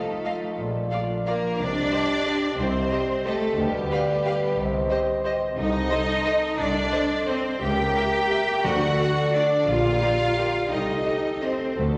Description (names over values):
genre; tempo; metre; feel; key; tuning
classical; 159-193 BPM; 3/4; rubato; unclear; A4 = 441 Hz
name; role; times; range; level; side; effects
rich studio violin section; second line; 0.0-12.0 s; G4 to G5; -31 LUFS; equal; none
dark French horn section; sustained chords; 0.0-12.0 s; F4 to E5; -31 LUFS; equal; none
concert harp; arpeggios; 0.0-12.0 s; Bb2 to D5; -33 LUFS; equal; none
rich studio cello section; bass; 0.0-12.0 s; G3 to G4; -30 LUFS; equal; none
warm studio violin section; melody; 0.2-11.5 s; D5 to F5; -36 LUFS; equal; none
rich studio viola section; accompaniment; 0.3-11.5 s; F4 to Eb5; -38 LUFS; equal; none
rich studio double bass section; bass; 0.6-12.0 s; Bb1 to D2; -32 LUFS; equal; none
timpani; percussion; 8.6-9.1, 11.8-12.0 s; D3; -32 LUFS; equal; none
room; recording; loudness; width
wet scoring stage reverb, RT60 1.6 s; faint mains hum; -24 LUFS; mono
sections
0.0-12.0 A section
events
none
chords
0.0 F7/C; 0.6 Bb; 1.6 Cm; 3.6 G/D; 4.6 Cm; 5.6 Adim/C; 7.6 C#dim7; 8.7 D; 9.7 Gm/Bb; 10.7 Am7b5/C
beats
0.25 | 0.58 0.91 1.26 | 1.59 1.92 2.27 | 2.59 2.92 3.26 | 3.59 3.92 4.26 | 4.58 4.91 5.25 | 5.58 5.91 6.26 | 6.59 6.92 7.28 | 7.62 7.96 8.31 | 8.65 8.99 9.35 | 9.68 10.02 10.38 | 10.71 11.05 11.42 | 11.78